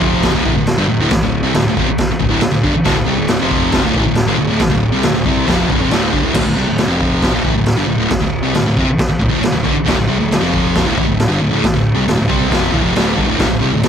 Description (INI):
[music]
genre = garage rock duo or trio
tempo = 137 BPM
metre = 4/4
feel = straight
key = unclear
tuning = A4 = 439 Hz
[part]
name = thick fuzz guitar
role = riff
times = 0.0-13.9 s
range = D2 to C4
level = -14 LUFS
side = equal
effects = distortion
[part]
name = fuzz picked electric bass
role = bass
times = 0.0-13.9 s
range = D1 to C2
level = -24 LUFS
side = equal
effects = overdrive
[part]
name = raw garage drum kit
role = drums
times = 0.0-13.9 s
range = crash cymbal, kick drum, snare drum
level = -17 LUFS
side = equal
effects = none
[sound]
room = light reverb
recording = none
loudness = -12 LUFS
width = side -8 dB against mid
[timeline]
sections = 0.0-6.3 A section; 6.3-13.9 B section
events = none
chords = 0.3 D5; 3.4 F5; 3.8 D5; 6.9 F5; 7.3 D5; 10.4 F5; 10.9 D5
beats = 0.23 0.67 | 1.10 1.54 1.98 2.41 | 2.85 3.28 3.72 4.16 | 4.59 5.03 5.47 5.91 | 6.34 6.78 7.22 7.66 | 8.10 8.54 8.98 9.42 | 9.87 10.31 10.75 11.19 | 11.63 12.07 12.52 12.96 | 13.40 13.85